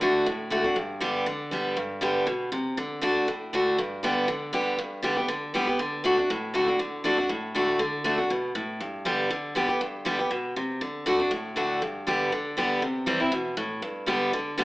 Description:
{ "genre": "bluegrass", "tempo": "239 BPM", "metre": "4/4", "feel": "swing 54% on 8ths", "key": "G major", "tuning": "A4 = 440 Hz", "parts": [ { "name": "picked steel-string acoustic guitar", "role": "solo", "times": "0.0-14.6 s", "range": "G2 to G4", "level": "-24 LUFS", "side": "equal", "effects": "none" } ], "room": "moderate large studio reverb, RT60 1.3 s", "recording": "band playing live in one room, AM radio sound", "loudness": "-24 LUFS", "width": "side -20 dB against mid", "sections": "0.0-4.8 A section; 4.8-12.8 A section; 12.8-14.6 B section", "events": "none", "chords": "0.0 D; 0.8 G; 2.8 D; 3.8 G; 5.8 D; 8.8 G; 10.8 D; 11.8 G; 12.8 C; 13.8 G", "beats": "0.01 0.26 0.51 | 0.76 1.01 1.26 1.52 | 1.77 2.02 2.27 2.52 | 2.77 3.02 3.27 3.53 | 3.78 4.03 4.28 4.53 | 4.78 5.03 5.29 5.54 | 5.79 6.04 6.29 6.54 | 6.79 7.04 7.29 7.55 | 7.80 8.05 8.30 8.55 | 8.80 9.05 9.30 9.55 | 9.81 10.06 10.31 10.56 | 10.81 11.06 11.31 11.56 | 11.81 12.07 12.32 12.57 | 12.82 13.07 13.32 13.57 | 13.82 14.08 14.33 14.58" }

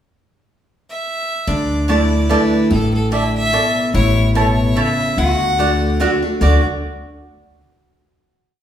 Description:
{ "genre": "bluegrass", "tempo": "146 BPM", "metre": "3/4", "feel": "swing 55% on 8ths", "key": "D major", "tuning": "A4 = 439 Hz", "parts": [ { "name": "clear fiddle", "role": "melody", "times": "0.9-6.6 s", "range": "A4 to F#5", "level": "-21 LUFS", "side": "equal", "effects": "none" }, { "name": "lap resonator guitar", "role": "second line", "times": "1.5-6.6 s", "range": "D4 to F#4", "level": "-24 LUFS", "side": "left 1 dB", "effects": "none" }, { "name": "picked steel-string acoustic guitar", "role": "accompaniment", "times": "1.5-6.6 s", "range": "A2 to F#4", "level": "-18 LUFS", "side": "left 1 dB", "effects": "none" }, { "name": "upright bass", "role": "bass", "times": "1.5-6.6 s", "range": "A1 to D2", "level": "-19 LUFS", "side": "equal", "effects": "none" }, { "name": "mandolin", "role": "stabs", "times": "1.9-6.6 s", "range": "A3 to A5", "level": "-21 LUFS", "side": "right 4 dB", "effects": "none" } ], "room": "wet large studio reverb, RT60 1.4 s", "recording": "band playing live in one room", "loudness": "-14 LUFS", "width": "side -10 dB against mid", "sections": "0.2-1.5 pickup bar; 1.5-6.4 A section; 6.4-7.7 final chord", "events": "none", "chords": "0.2 N.C.; 1.5 Dsus2; 3.9 A; 5.2 D", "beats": "| 0.24 0.65 1.06 | 1.48 1.89 2.30 | 2.71 3.12 3.53 | 3.94 4.36 4.77 | 5.18 5.59 6.00 | 6.41" }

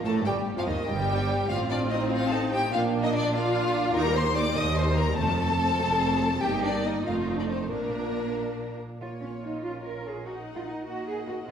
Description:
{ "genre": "quick classical-period movement for string orchestra", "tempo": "97 BPM (dotted quarters)", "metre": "6/8", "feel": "straight", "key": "Bb major", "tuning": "A4 = 442 Hz", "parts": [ { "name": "rich studio violin section", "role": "melody", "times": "0.0-11.5 s", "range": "Bb4 to Eb6", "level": "-31 LUFS", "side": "left 4 dB", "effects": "none" }, { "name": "rich chamber violin section", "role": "second line", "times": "0.0-11.5 s", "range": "Bb3 to Gb5", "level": "-32 LUFS", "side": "left 1 dB", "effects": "none" }, { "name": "rich chamber cello section", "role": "bass", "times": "0.0-11.4 s", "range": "Eb2 to Bb4", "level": "-32 LUFS", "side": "right 2 dB", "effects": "none" }, { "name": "rich chamber double bass section", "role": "bass", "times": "0.0-11.5 s", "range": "F1 to Eb2", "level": "-33 LUFS", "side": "right 1 dB", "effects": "none" }, { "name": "rich chamber viola section", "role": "accompaniment", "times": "0.1-11.5 s", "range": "Eb3 to G4", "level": "-30 LUFS", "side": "right 2 dB", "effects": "none" } ], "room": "wet scoring stage reverb, RT60 1.6 s", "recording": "heard from further back in the room", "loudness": "-24 LUFS", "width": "side -8 dB against mid", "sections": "0.0-9.0 A section; 9.0-11.5 A section", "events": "none", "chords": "0.3 Ebadd9/G; 1.5 F7/A; 2.7 Bb; 4.0 Eb; 5.2 F; 6.4 Eb/G; 7.1 F7; 7.7 Bb; 9.0 Bbm; 10.3 Gb6/Bb", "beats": "| 0.26 0.89 | 1.51 2.12 | 2.73 3.34 | 3.96 4.57 | 5.18 5.80 | 6.42 7.05 | 7.70 8.36 | 9.01 9.63 | 10.26 10.87 | 11.49" }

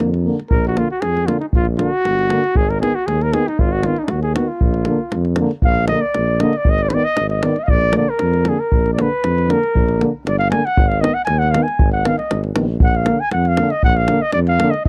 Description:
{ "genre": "balkan folk, Balkan brass band", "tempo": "117 BPM", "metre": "2/4", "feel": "straight", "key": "Bb phrygian dominant", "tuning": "A4 = 438 Hz", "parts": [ { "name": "warm euphonium", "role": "accompaniment", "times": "0.0-14.7 s", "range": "Bb3 to Cb4", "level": "-24 LUFS", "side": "equal", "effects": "none" }, { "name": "warm euphonium", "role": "accompaniment", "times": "0.0-14.7 s", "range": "D3 to Eb3", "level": "-26 LUFS", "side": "equal", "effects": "none" }, { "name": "mellow tuba", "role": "bass", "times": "0.0-14.9 s", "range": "G1 to F2", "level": "-22 LUFS", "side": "equal", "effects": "none" }, { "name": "davul", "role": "percussion", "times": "0.0-14.9 s", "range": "none", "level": "-21 LUFS", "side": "equal", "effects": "none" }, { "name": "dark trumpet", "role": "melody", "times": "0.5-14.9 s", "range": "D4 to Ab5", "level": "-21 LUFS", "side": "equal", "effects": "none" } ], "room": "little or no reverb", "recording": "dry, close 1970s-style studio recording", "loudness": "-17 LUFS", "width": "mono", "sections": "0.5-14.9 A section", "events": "trumpet solo 0.5-14.9", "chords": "0.0 Bb; 2.6 Abm; 4.6 Bb; 6.7 Abm; 7.7 Bb; 10.8 Abm; 12.8 Bb", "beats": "0.00 | 0.52 1.03 | 1.54 2.06 | 2.57 3.08 | 3.60 4.11 | 4.63 5.14 | 5.65 6.17 | 6.68 7.19 | 7.71 8.22 | 8.73 9.24 | 9.76 10.27 | 10.78 11.29 | 11.80 12.31 | 12.82 13.32 | 13.83 14.34 | 14.85" }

